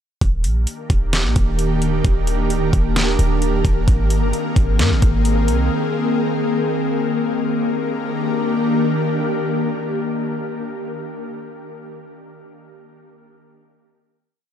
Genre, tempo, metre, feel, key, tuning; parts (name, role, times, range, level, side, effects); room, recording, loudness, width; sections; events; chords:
hip hop, atmospheric cloud-rap; 131 BPM; 4/4; half-time; Eb major; A4 = 440 Hz
ethereal airy pad; sustained chords; 0.7-10.7 s; Eb3 to Bb4; -20 LUFS; left 1 dB; ensemble chorus, built-in reverb, sidechain pumping
warm 808-style bass; bass; 0.2-5.7 s; D1 to Ab2; -18 LUFS; equal
smooth R&B drum kit; drums; 0.2-5.6 s; hi-hat, kick drum, snare drum; -20 LUFS; equal
light reverb; -17 LUFS; side -9 dB against mid
0.2-7.5 verse; 7.5-11.2 final chord
0.2 Ebmaj7; 3.9 Abadd9; 7.5 Ebmaj7